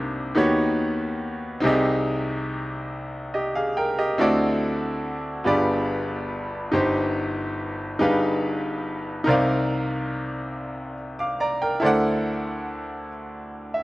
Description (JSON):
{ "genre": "gospel", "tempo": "47 BPM (dotted quarters)", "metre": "6/8", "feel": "straight", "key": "C minor", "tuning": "A4 = 440 Hz", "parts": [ { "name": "bright grand piano", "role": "solo", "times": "0.0-13.8 s", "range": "G1 to D6", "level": "-22 LUFS", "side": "equal", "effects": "none" } ], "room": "little or no reverb", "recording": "recorded outdoors, with no room sound", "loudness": "-22 LUFS", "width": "side -18 dB against mid", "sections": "0.0-13.8 A section", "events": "none", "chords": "0.4 Eb7alt; 1.6 Abmaj7/C; 4.2 D9; 5.5 G7b9; 6.7 Cm/G; 8.0 G7b9b13; 9.3 Cm11; 11.8 D9" }